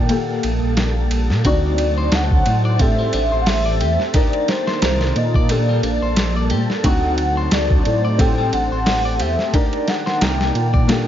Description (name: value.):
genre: trip hop.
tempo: 89 BPM.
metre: 4/4.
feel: swing 56% on 16ths.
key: G harmonic minor.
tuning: A4 = 440 Hz.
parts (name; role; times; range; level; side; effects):
pure breathy sine lead; melody; 0.0-11.1 s; C5 to G5; -23 LUFS; equal; analog chorus, tape echo.
felt-muted upright piano; accompaniment; 0.0-11.1 s; Bb3 to Bb4; -25 LUFS; left 2 dB; tremolo, tape echo.
dark analog pad; sustained chords; 0.0-11.1 s; Bb3 to C5; -27 LUFS; right 1 dB; chorus.
dark detuned saw bass; bass; 0.0-11.1 s; A1 to Bb2; -20 LUFS; equal; none.
wind-like tuned noise texture; texture; 0.0-11.1 s; A4 to A5; -32 LUFS; right 2 dB; built-in reverb.
boom bap sampler-style drum kit; drums; 0.1-11.1 s; hi-hat, kick drum, ride cymbal, snare drum; -20 LUFS; equal; none.
clean electric guitar; arpeggios; 1.5-11.1 s; G3 to D5; -30 LUFS; left 4 dB; tape echo.
room: digital ambience.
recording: nothing above 7.5 kHz.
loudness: -15 LUFS.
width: side -10 dB against mid.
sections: 0.0-11.1 A section.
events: none.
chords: 0.1 Gmadd9/Bb; 1.4 D7b9; 2.8 Am7; 4.1 Cm9; 5.5 Gmadd9/Bb; 6.8 D7b9; 8.2 Am7; 9.5 Cm9.